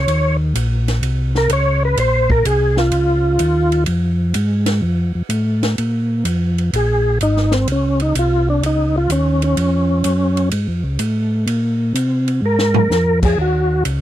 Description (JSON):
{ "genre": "soul jazz organ trio", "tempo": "126 BPM", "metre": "4/4", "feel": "swing 69% on 8ths", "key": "Bb minor", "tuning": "A4 = 436 Hz", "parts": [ { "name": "percussive tonewheel organ", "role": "melody", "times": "0.0-3.8, 6.8-13.8 s", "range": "C4 to Db5", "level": "-17 LUFS", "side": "equal", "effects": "slow rotary speaker, overdrive, chorus vibrato" }, { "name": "tonewheel organ", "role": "bass", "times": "0.0-14.0 s", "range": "Ab1 to C3", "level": "-17 LUFS", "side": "equal", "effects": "chorus vibrato, slow rotary speaker" }, { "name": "compact cocktail drum kit", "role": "drums", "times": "0.1-14.0 s", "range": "crash cymbal, hi-hat, kick drum, ride cymbal, snare drum, toms", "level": "-25 LUFS", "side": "right 1 dB", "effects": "none" } ], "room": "little or no reverb", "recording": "dry, close 1970s-style studio recording", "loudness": "-14 LUFS", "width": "side -12 dB against mid", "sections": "0.0-5.8 A section; 5.8-14.0 A section", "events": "tonewheel organ solo 0.0-5.8, 5.8-14.0; drum fill 12.4-12.9", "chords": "0.1 Eb5; 2.0 Bbm9; 4.8 F; 5.8 Bbm9; 13.4 Ebm7" }